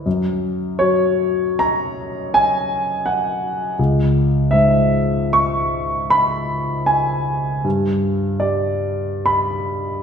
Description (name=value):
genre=classical, impressionist solo piano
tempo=65-85 BPM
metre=5/4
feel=rubato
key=C# minor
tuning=A4 = 440 Hz
part: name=warm grand piano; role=solo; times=0.0-10.0 s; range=C#2 to C#6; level=-16 LUFS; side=equal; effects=none
room=wet recital hall reverb, RT60 1.6 s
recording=recorded in a church or concert hall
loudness=-16 LUFS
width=side -7 dB against mid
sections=0.0-10.0 A section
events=none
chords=0.1 N.C.; 3.8 C#m7; 7.6 N.C.